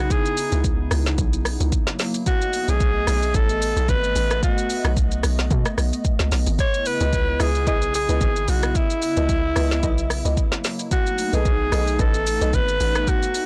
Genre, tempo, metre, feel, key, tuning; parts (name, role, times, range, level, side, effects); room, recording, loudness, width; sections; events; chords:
amapiano; 111 BPM; 4/4; swing 55% on 16ths; A4 = 440 Hz
bright alto saxophone; melody; 0.0-13.5 s; E4 to C#5; -26 LUFS; equal; delay
hollow soft pad; sustained chords; 0.0-13.5 s; C#3 to D#5; -32 LUFS; equal; chorus, sidechain pumping
hollow log drum bass; bass; 0.0-13.1 s; G#1 to B2; -25 LUFS; equal
deep house drum kit; drums; 0.1-13.5 s; hi-hat, kick drum, rim click, shaker, snare drum; -26 LUFS; equal; soft clipping on snare
deep mellow chord stab; stabs; 7.0-12.5 s; E4 to D#5; -33 LUFS; equal; chorus, delay
little or no reverb; blown-out, overdriven recording, overdrive; -21 LUFS; mono
0.0-13.5 A section
0.0 C#m9; 1.7 F#7; 2.3 B7; 6.6 C#m9; 10.4 F#7; 10.9 B7